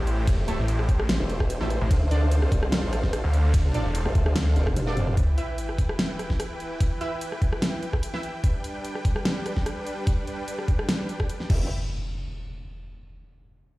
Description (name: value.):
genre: heavy wobble dubstep.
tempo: 147 BPM.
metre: 4/4.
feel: half-time.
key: E phrygian.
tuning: A4 = 442 Hz.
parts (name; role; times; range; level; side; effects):
supersaw chords; sustained chords; 0.0-11.7 s; E3 to B5; -33 LUFS; equal; sidechain pumping.
snarling distorted saw bass; bass; 0.0-4.5 s; E1 to D2; -23 LUFS; equal; distortion, overdrive.
dubstep drum kit; drums; 0.1-11.6 s; crash cymbal, hi-hat, ride cymbal, rim click, snare drum, toms; -30 LUFS; equal; studio reverb.
electronic kick drum; drums; 0.3-11.6 s; none; -23 LUFS; equal; studio reverb.
orchestra-hit-like synth stab; stabs; 0.5-8.2 s; A3 to E5; -35 LUFS; right 2 dB; built-in reverb, tape echo.
formant-sweep wobble bass; bass; 1.2-5.2, 11.5-11.7 s; E1 to D2; -24 LUFS; equal; chorus, overdrive.
sub drop and impact; sound effects; 5.2-6.8, 11.5-13.1 s; none; -30 LUFS; equal; none.
room: little or no reverb.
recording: played on a big sound system in a bare room, stone room reverb.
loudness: -23 LUFS.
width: side -19 dB against mid.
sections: 0.0-5.2 A section; 5.2-11.7 B section; 11.7-13.3 C section.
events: drop 0.0-5.2; drum fill 4.4-5.2; impact 5.2-6.8.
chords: 0.0 Am7; 1.9 Dm7; 5.2 Em; 8.4 G; 11.5 Em; 11.7 N.C..